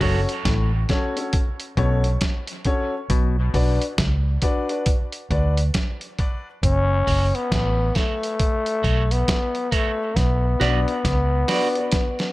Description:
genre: dub reggae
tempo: 68 BPM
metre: 4/4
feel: swing 61% on 16ths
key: B minor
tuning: A4 = 440 Hz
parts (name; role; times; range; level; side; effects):
- electric guitar at the edge of break-up; accompaniment; 0.0-0.2, 7.1-11.7 s; F#4 to D5; -29 LUFS; right 5 dB; high-pass filter, dub echo
- mellow clav; riff; 0.0-3.4 s; F#2 to B2; -31 LUFS; left 5 dB; dub echo
- dark grand piano; stabs; 0.0-11.9 s; C#4 to D5; -28 LUFS; left 2 dB; high-pass filter, dub echo
- vintage muted fingered electric bass; bass; 0.0-11.4 s; F#1 to D2; -20 LUFS; equal; none
- dusty soul sampler-style drum kit; drums; 0.0-12.3 s; hi-hat, kick drum, snare drum; -23 LUFS; equal; none
- growling trombone; melody; 6.6-12.3 s; A3 to C#4; -23 LUFS; left 2 dB; dub echo
room: light reverb, digital ambience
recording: none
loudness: -19 LUFS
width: side -18 dB against mid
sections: 0.0-12.3 A section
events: break 0.0-6.6; filter sweep 3.1-10.2; drum fill 10.2-12.3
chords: 0.0 F#m; 3.1 Bm; 6.6 F#m; 10.2 Bm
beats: 0.45 1.33 2.22 | 3.10 3.98 4.86 5.75 | 6.63 7.51 8.39 9.28 | 10.16 11.04 11.93

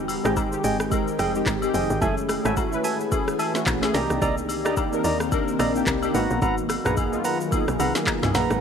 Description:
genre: amapiano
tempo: 109 BPM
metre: 4/4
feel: swing 58% on 16ths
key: unclear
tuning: A4 = 439 Hz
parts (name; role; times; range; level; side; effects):
- warm analog keys; accompaniment; 0.0-8.6 s; Ab3 to B4; -26 LUFS; left 1 dB; chorus
- ethereal airy pad; sustained chords; 0.0-8.6 s; Eb3 to Bb4; -31 LUFS; left 2 dB; ensemble chorus, built-in reverb, tremolo, sidechain pumping
- tight log drum bass; bass; 0.0-8.6 s; F1 to Eb2; -28 LUFS; equal; none
- afro-pop drum kit; drums; 0.1-8.6 s; handclaps, hi-hat, kick drum, rim click, shaker, snare drum, toms; -27 LUFS; equal; overdrive
- agogo bells and woodblock; percussion; 0.1-8.3 s; none; -33 LUFS; left 9 dB; none
- percussive organ stab; stabs; 0.2-8.6 s; Ab4 to Bb5; -28 LUFS; right 3 dB; chorus, digital delay
room: light reverb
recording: none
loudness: -21 LUFS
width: side -7 dB against mid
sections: 0.0-8.6 A section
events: drop 0.0-8.6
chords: 0.0 Fm9; 2.0 Gbm9; 3.9 Cm9; 6.1 Abm9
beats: 0.36 0.92 1.47 | 2.02 2.57 3.12 3.67 | 4.22 4.77 5.32 5.87 | 6.42 6.97 7.52 8.07

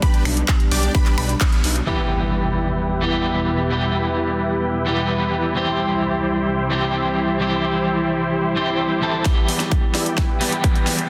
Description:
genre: EDM, festival progressive house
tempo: 130 BPM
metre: 4/4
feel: straight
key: unclear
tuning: A4 = 441 Hz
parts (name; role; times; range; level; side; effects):
- lush unison pad; sustained chords; 0.0-11.1 s; C2 to G5; -28 LUFS; equal; chorus, vintage 12-bit sampler grit, sidechain pumping
- unison pluck; arpeggios; 0.0-1.3 s; B5 to D6; -34 LUFS; equal; sidechain pumping, delay
- dense compressed supersaw; riff; 0.0-10.5 s; D4 to D5; -26 LUFS; equal; sidechain pumping, low-pass filter, delay
- big-room dance drum kit; drums; 0.0-2.0, 9.3-11.1 s; crash cymbal, finger snaps, handclaps, hi-hat, snare drum; -28 LUFS; equal; overdrive, high-pass filter on hats, low-pass filter on hats, high-pass filter on snare, low-pass filter on snare, high-pass filter on cymbals, low-pass filter on cymbals
- electronic kick drum; drums; 0.0-1.5, 9.3-10.7 s; none; -20 LUFS; equal; overdrive
- detuned saw bass; bass; 0.3-1.8, 9.5-11.0 s; B1 to E2; -25 LUFS; equal; chorus, sidechain pumping, high-pass filter
- electric guitar at the edge of break-up; accompaniment; 1.9-11.1 s; E3 to A4; -25 LUFS; equal; tremolo, sidechain pumping, delay
- impact and riser; sound effects; 1.9-3.7, 10.6-11.1 s; none; -30 LUFS; equal; none
room: moderate lush hall reverb, RT60 2.3 s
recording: dense, heavily limited modern master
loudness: -20 LUFS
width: mono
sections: 0.0-1.9 A section; 1.9-9.3 B section; 9.3-11.1 C section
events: drop 0.0-1.9; band accent 1.4; impact 1.9-3.7; build-up 9.3-11.1; drum fill 9.3-11.1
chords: 0.0 G/B; 1.9 Em; 5.6 C; 9.3 Em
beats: | 0.02 0.48 0.95 1.41 | 1.87 2.33 2.79 3.25 | 3.72 4.18 4.64 5.10 | 5.56 6.02 6.49 6.95 | 7.41 7.87 8.33 8.79 | 9.26 9.72 10.18 10.64

